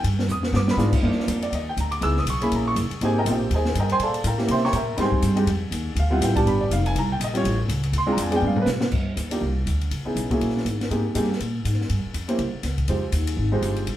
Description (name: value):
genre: jazz, small-group swing and bop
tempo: 243 BPM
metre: 4/4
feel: swing 58% on 8ths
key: C minor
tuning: A4 = 439 Hz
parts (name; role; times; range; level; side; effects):
- warm baby grand piano; accompaniment; 0.0-13.9 s; G3 to Fb6; -24 LUFS; right 1 dB; none
- upright bass; bass; 0.0-14.0 s; F1 to C3; -24 LUFS; equal; none
- open jazz drum kit; drums; 0.0-13.9 s; crash cymbal, hi-hat, kick drum, ride cymbal, snare drum, toms; -29 LUFS; left 1 dB; none
room: wet studio reverb, RT60 0.9 s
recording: heard from further back in the room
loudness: -20 LUFS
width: side -12 dB against mid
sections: 0.0-1.0 A section; 1.0-8.9 A section; 8.9-14.0 B section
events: drum fill 0.3-0.8, 8.4-8.9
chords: 0.0 Ebadd9; 0.5 G7b9; 1.0 Ebmaj9; 2.0 Dbm7; 2.5 F#9; 3.0 Abmaj9; 4.0 Gm9; 4.5 C7b9; 5.0 Fm9; 6.0 Dm11; 6.5 G7; 7.0 C7sus4; 7.4 A; 7.9 Dm7b5; 8.4 G; 8.9 Cmadd9; 9.9 Dbm7; 10.4 F#9; 10.9 Abmaj9; 11.9 Gm7; 12.4 N.C.; 12.9 Fm9